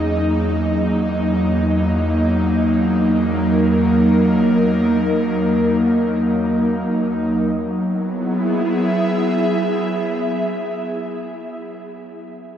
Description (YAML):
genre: ambient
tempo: free time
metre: none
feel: none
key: E lydian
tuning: A4 = 440 Hz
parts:
  - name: airy breathy pad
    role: solo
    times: 0.0-12.0 s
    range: E2 to E5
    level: -16 LUFS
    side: equal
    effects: chorus, tape echo
room: wet huge ambient reverb, RT60 8.1 s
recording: in a vast, echoing space, nothing above 10.3 kHz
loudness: -16 LUFS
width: side -9 dB against mid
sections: 0.0-7.5 A section; 7.5-11.8 B section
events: none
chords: 0.0 D#m/E; 7.5 Eadd9